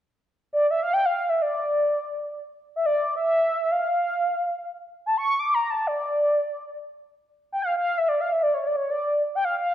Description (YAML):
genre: klezmer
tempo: free time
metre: none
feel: none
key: D harmonic minor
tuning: A4 = 440 Hz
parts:
  - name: mellow horn-like synth lead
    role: solo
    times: 0.5-9.7 s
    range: C#5 to D6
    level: -22 LUFS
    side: equal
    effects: chorus
room: wet recital hall reverb, RT60 1.4 s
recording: dark, warm production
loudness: -22 LUFS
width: side -11 dB against mid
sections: 0.3-7.5 A section; 7.5-9.7 B section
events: none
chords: none